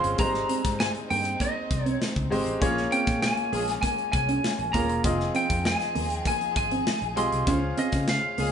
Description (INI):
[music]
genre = polished 1980s jazz-funk pop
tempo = 99 BPM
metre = 4/4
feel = straight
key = Ab major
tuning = A4 = 441 Hz
[part]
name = lightly driven lead guitar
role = melody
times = 0.0-8.5 s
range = Eb5 to C6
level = -27 LUFS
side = equal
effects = none
[part]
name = clear baby grand piano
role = accompaniment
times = 0.0-8.5 s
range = G3 to F5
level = -30 LUFS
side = left 1 dB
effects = none
[part]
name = rich studio string section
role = sustained chords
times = 0.0-8.5 s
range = Db3 to C5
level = -38 LUFS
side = left 2 dB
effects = none
[part]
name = vintage muted fingered electric bass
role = bass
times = 0.0-8.5 s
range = Eb1 to Db3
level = -32 LUFS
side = equal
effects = none
[part]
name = modern studio drum kit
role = drums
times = 0.0-8.5 s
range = hi-hat, kick drum, snare drum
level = -29 LUFS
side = equal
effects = none
[part]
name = mellow electric guitar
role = riff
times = 0.2-8.5 s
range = Ab3 to F4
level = -32 LUFS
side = right 5 dB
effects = none
[part]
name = mellow horn section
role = second line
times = 3.5-3.7, 8.4-8.5 s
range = Ab3 to Ab4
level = -30 LUFS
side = equal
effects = none
[sound]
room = wet studio reverb, RT60 0.8 s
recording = band playing live in one room, nothing above 10.6 kHz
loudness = -23 LUFS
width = side -8 dB against mid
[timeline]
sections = 0.0-8.5 A section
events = none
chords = 0.2 Abmaj7; 2.6 Bbm7; 5.0 Fm9; 7.5 Dbmaj7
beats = | 0.19 0.79 1.40 2.01 | 2.61 3.22 3.83 4.43 | 5.04 5.65 6.25 6.86 | 7.47 8.08